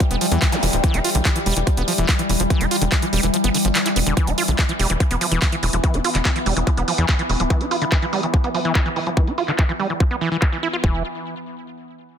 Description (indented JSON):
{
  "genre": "psychedelic trance",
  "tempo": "144 BPM",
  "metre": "4/4",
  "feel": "straight",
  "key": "E phrygian",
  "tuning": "A4 = 442 Hz",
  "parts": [
    { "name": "evolving wavetable pad", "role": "sustained chords", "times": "0.0-10.9 s", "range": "E3 to B3", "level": "-25 LUFS", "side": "left 2 dB", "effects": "chorus, built-in reverb, sidechain pumping" },
    { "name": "overdriven acid bass", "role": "riff", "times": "0.0-11.0 s", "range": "D3 to F4", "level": "-24 LUFS", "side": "right 1 dB", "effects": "auto-pan, sidechain pumping, digital delay" },
    { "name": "drum and bass drum kit", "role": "drums", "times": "0.0-10.8 s", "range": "handclaps, hi-hat", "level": "-24 LUFS", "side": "equal", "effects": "overdrive, low-pass filter on hats, low-pass filter on snare, low-pass filter on room" },
    { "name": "electronic kick drum", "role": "drums", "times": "0.0-10.9 s", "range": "none", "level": "-18 LUFS", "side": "equal", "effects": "none" },
    { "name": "tight sequencer bass", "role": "bass", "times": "0.1-7.5, 10.8-11.0 s", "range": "D1 to E2", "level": "-22 LUFS", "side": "equal", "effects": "none" },
    { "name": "zap", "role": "sound effects", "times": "0.5-0.6 s", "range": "none", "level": "-28 LUFS", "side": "equal", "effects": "none" }
  ],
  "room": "light reverb, digital ambience",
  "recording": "dense, heavily limited modern master",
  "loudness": "-17 LUFS",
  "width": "side -8 dB against mid",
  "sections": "0.0-4.2 A section; 4.2-10.8 B section; 10.8-12.2 C section",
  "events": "drop 0.0-4.2; kick drops out 3.3-4.2; filter sweep on drum 4.2-10.8; filter sweep on ambient pad 4.2-10.8",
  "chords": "0.0 E5; 10.8 N.C."
}